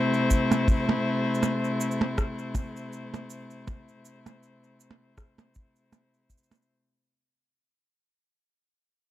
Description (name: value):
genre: folktronica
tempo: 80 BPM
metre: 4/4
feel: swing 56% on 16ths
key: C major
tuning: A4 = 436 Hz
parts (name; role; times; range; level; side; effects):
- dark string quartet; sustained chords; 0.0-6.7 s; C3 to C5; -26 LUFS; left 2 dB; none
- electronic cabasa, percussion blips and rim click; drums; 0.1-6.7 s; none; -28 LUFS; right 3 dB; overdrive
- kick drum; drums; 0.3-6.5 s; none; -25 LUFS; equal; none
room: little or no reverb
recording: dry, close 1970s-style studio recording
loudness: -24 LUFS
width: side -14 dB against mid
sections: 0.0-6.7 A section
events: fade-out 0.0-6.7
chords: 0.0 C6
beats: | 0.67 1.42 2.17 2.92 | 3.67 4.42 5.17 5.92